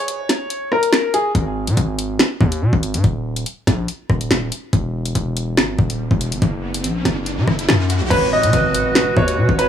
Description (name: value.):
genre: hip hop, drill.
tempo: 142 BPM.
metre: 4/4.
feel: half-time.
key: G# minor.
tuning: A4 = 438 Hz.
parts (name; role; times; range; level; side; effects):
bright upright piano; melody; 0.0-1.3, 8.1-9.7 s; G#4 to D#5; -20 LUFS; left 1 dB; tape echo.
drill drum kit; drums; 0.1-9.7 s; crash cymbal, finger snaps, hi-hat, kick drum, rim click, snare drum; -18 LUFS; equal; overdrive.
distorted 808-style bass; bass; 1.3-9.7 s; D#1 to C#3; -19 LUFS; equal; distortion.
riser and impact; sound effects; 5.8-9.7 s; none; -26 LUFS; equal; none.
breathy large pan pipes; second line; 8.1-9.7 s; B4 to C#5; -22 LUFS; right 3 dB; tape echo.
clear woodwind section; sustained chords; 8.1-9.7 s; B2 to F#4; -23 LUFS; equal; none.
room: small room ambience.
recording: none.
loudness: -16 LUFS.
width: side -9 dB against mid.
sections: 0.0-8.1 A section; 8.1-9.7 B section.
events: break 0.0-1.3; riser 5.8-8.1; impact 8.1-9.7.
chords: 0.0 N.C.; 1.3 G#5; 3.0 D#5; 4.7 Emaj7; 6.4 F#5; 8.1 G#m7.